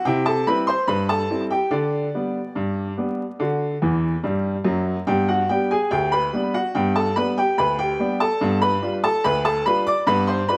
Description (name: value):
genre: ragtime piano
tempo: 72 BPM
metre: 2/4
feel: straight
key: G major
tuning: A4 = 439 Hz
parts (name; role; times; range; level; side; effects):
- bright upright piano; solo; 0.0-10.6 s; D2 to D6; -22 LUFS; equal; none
room: moderate spring reverb, RT60 1.3 s, small room ambience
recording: vinyl crackle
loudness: -22 LUFS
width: mono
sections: 0.0-10.6 A section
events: upright piano fill 3.8-5.1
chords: 0.0 C; 1.7 G/D; 3.4 D; 5.1 G; 8.4 G7